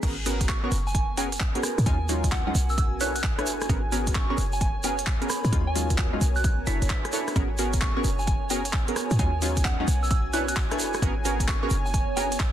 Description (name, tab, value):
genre	UK garage, two-step garage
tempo	131 BPM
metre	4/4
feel	swing 65% on 16ths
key	unclear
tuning	A4 = 441 Hz
part	warm analog pad	sustained chords	0.2-12.5 s	G#5	-38 LUFS	right 1 dB	chorus, sidechain pumping
part	punchy chord stab	stabs	0.0-12.3 s	F#3 to C#5	-30 LUFS	equal	chorus, tape echo
part	short 808-style bass	bass	0.0-12.4 s	F#1 to G#2	-28 LUFS	equal	sidechain pumping
part	electronic kick drum	drums	0.0-12.5 s	none	-26 LUFS	equal	none
part	garage drum kit	drums	0.0-12.5 s	crash cymbal, handclaps, hi-hat, rim click	-32 LUFS	equal	low-pass filter on hats, soft clipping on snare, low-pass filter on snare, low-pass filter on cymbals, low-pass filter on room
part	tube shaker	percussion	0.0-12.5 s	none	-35 LUFS	right 3 dB	none
part	granular cloud pad	texture	0.0-12.5 s	B3 to C#5	-36 LUFS	right 2 dB	built-in reverb, sidechain pumping
part	soft synth bell	melody	0.5-12.5 s	F#5 to B6	-33 LUFS	right 2 dB	chorus, tape echo
room	light reverb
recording	dense, heavily limited modern master, lossy compression artefacts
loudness	-23 LUFS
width	side -11 dB against mid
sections	0.0-12.5 A section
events	drop 0.0-12.5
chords	0.0 G#m11; 1.9 D#m11; 2.5 Bm11; 3.7 G#m11; 5.5 D#m11; 6.2 Bm11; 7.4 G#m11; 9.2 D#m11; 9.9 Bm11; 11.0 G#m11